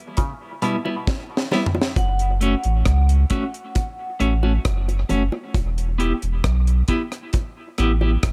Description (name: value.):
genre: dub reggae.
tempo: 67 BPM.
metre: 4/4.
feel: straight.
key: F# phrygian.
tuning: A4 = 440 Hz.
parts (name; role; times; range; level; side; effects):
muted clav; arpeggios; 0.2-0.8 s; B2 to C#3; -34 LUFS; equal; overdrive, dub echo.
deep reggae drum kit; drums; 0.2-8.3 s; hi-hat, kick drum, rim click, snare drum, toms; -25 LUFS; equal; none.
bongos; percussion; 0.2-8.3 s; none; -34 LUFS; equal; dub echo.
clean electric guitar; accompaniment; 0.6-8.1 s; G3 to G4; -28 LUFS; equal; tremolo, dub echo.
vibraphone with medium hard mallets; melody; 2.0-3.8 s; F#5; -34 LUFS; equal; dub echo.
warm sub bass; bass; 2.0-8.3 s; E1 to C#2; -21 LUFS; equal; none.
room: small room ambience.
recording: none.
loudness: -21 LUFS.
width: mono.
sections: 0.0-2.0 A section; 2.0-8.3 B section.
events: break 0.0-2.0; drum fill 1.1-2.0.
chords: 0.0 Em; 2.0 F#m; 5.5 Em.